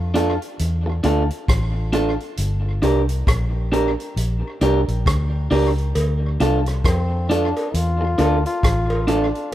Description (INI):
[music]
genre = roots reggae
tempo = 67 BPM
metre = 4/4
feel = swing 60% on 16ths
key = D minor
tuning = A4 = 439 Hz
[part]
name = vintage muted fingered electric bass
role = bass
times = 0.0-9.3 s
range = G1 to F2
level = -21 LUFS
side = equal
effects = none
[part]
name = electric guitar at the edge of break-up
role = accompaniment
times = 0.1-9.3 s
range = D4 to Bb4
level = -22 LUFS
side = right 1 dB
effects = tape echo
[part]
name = vintage drum kit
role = drums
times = 0.2-9.5 s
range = hi-hat, kick drum, rim click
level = -24 LUFS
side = equal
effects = tape echo
[part]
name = cowbell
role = percussion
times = 6.0-9.1 s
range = none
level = -28 LUFS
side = equal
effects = none
[part]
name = clear trombone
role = melody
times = 6.9-9.5 s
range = C4 to F4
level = -25 LUFS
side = left 2 dB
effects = tape echo
[sound]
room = little or no reverb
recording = rough home demo mix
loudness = -18 LUFS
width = side -13 dB against mid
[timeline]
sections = 0.0-9.5 A section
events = none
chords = 0.0 Dm; 2.4 Gm; 6.0 Dm